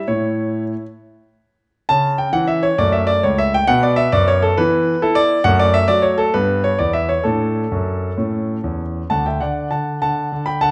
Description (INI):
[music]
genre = classical-period piano sonatina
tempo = 67 BPM (dotted quarters)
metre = 6/8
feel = rubato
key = D major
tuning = A4 = 440 Hz
[part]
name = clear grand piano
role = solo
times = 0.0-10.7 s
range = C#2 to B5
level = -18 LUFS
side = equal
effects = none
[sound]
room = moderate recital hall reverb, RT60 1.3 s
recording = nothing above 10.7 kHz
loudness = -18 LUFS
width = mono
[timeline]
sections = 0.0-9.1 A section; 9.1-10.7 B section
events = none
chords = 0.1 A; 1.9 C#dim; 2.8 F#m; 3.7 B5; 4.6 E5; 5.4 F#m7; 6.3 Em/G; 7.2 D/A; 8.2 A; 9.1 D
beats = | 0.07 0.98 | 1.90 2.80 | 3.69 4.57 | 5.45 6.34 | 7.25 8.18 | 9.11 10.00